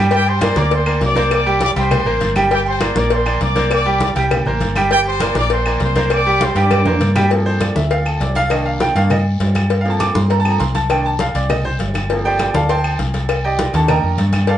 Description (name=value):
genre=latin, salsa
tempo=200 BPM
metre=4/4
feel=straight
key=G minor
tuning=A4 = 440 Hz
part: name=bright baby grand piano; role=accompaniment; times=0.0-14.6 s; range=Eb3 to D6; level=-18 LUFS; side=right 2 dB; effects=none
part: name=hollow-body short-scale fingered electric bass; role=bass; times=0.0-14.6 s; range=G1 to G2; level=-18 LUFS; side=equal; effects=none
part: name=clear trumpet section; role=melody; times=0.1-7.1 s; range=G4 to D6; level=-19 LUFS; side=equal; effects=none
part: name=agogo bells and timbales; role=percussion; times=0.1-14.6 s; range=none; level=-27 LUFS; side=right 1 dB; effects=none
part: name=congas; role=percussion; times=0.1-14.6 s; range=none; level=-24 LUFS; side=left 1 dB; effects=none
part: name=cowbell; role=percussion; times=0.1-14.6 s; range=none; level=-24 LUFS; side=left 5 dB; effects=none
part: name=guiro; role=percussion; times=0.1-14.6 s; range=none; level=-35 LUFS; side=left 4 dB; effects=none
part: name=claves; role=percussion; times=0.4-14.5 s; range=none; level=-29 LUFS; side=left 2 dB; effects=none
room=wet studio reverb, RT60 0.5 s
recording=band playing live in one room, nothing above 10.3 kHz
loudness=-14 LUFS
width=side -11 dB against mid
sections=0.0-7.3 A section; 7.3-14.6 B section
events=drum fill 6.6-7.3; grand piano solo 7.3-14.6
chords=0.1 Gmadd11; 1.3 Csus2; 2.5 Gmadd11; 3.7 Csus2; 4.9 Gmadd11; 6.1 Csus2; 7.3 Gm11; 8.5 Cm9; 9.7 Gm11; 10.9 Cm9; 12.1 Gm11; 13.3 Cm9